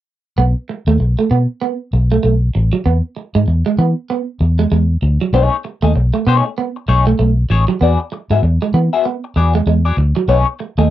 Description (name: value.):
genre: funk.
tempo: 97 BPM.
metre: 4/4.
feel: swing 60% on 16ths.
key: B mixolydian.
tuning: A4 = 440 Hz.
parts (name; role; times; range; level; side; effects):
electric guitar at the edge of break-up; riff; 0.4-10.9 s; F#3 to B3; -19 LUFS; right 6 dB; lush chorus.
vintage muted fingered electric bass; bass; 0.4-10.9 s; A1 to E3; -13 LUFS; equal; none.
clean electric guitar; accompaniment; 5.3-10.9 s; A3 to E5; -17 LUFS; left 7 dB; wah.
room: little or no reverb.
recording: dry, close 1970s-style studio recording.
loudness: -13 LUFS.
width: side -13 dB against mid.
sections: 0.4-10.9 A section.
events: none.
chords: 0.4 B7(no3); 2.9 E; 5.3 B13; 7.8 E9; 10.3 B13.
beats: | 0.38 1.00 1.62 2.24 | 2.86 3.48 4.10 4.71 | 5.33 5.95 6.57 7.19 | 7.81 8.43 9.05 9.67 | 10.29.